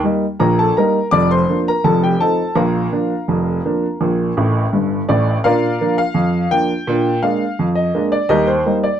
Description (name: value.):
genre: ragtime piano.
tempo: 84 BPM.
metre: 2/4.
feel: straight.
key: Bb major.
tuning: A4 = 441 Hz.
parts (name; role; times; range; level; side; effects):
clear upright piano; solo; 0.0-9.0 s; F1 to D6; -14 LUFS; equal; none.
room: light reverb.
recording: dark, warm production.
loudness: -14 LUFS.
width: side -9 dB against mid.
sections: 0.0-5.4 A section; 5.4-9.0 B section.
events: upright piano fill 4.4-5.4.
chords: 0.0 Eb; 1.1 Bb/F; 1.8 F7; 2.5 Bb; 6.9 Bb7; 8.3 Eb.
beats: 0.39 | 1.11 1.82 | 2.55 3.27 | 4.00 4.72 | 5.44 6.16 | 6.87 7.58 | 8.30.